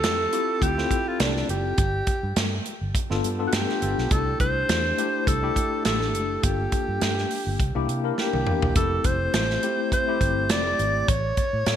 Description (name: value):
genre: polished 1980s jazz-funk pop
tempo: 103 BPM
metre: 4/4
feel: swing 54% on 16ths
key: unclear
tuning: A4 = 440 Hz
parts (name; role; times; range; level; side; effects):
- breathy alto saxophone; melody; 0.0-11.8 s; D4 to D5; -26 LUFS; equal; none
- bright tine electric piano; accompaniment; 0.0-11.1 s; A3 to Bb4; -28 LUFS; left 4 dB; medium stereo tremolo, wide subtle chorus
- vintage muted fingered electric bass; bass; 0.0-11.8 s; E1 to C3; -28 LUFS; equal; none
- modern studio drum kit; drums; 0.0-11.8 s; hi-hat, kick drum, snare drum, toms; -25 LUFS; right 1 dB; gated reverb
room: light reverb, small room ambience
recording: bright 1980s-style digital production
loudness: -21 LUFS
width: side -9 dB against mid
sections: 0.0-11.8 A section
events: drum fill 8.2-8.8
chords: 0.0 Dm11; 1.8 G7; 4.1 C6; 6.4 Gm7; 7.6 C7; 8.8 Fmaj7; 11.1 A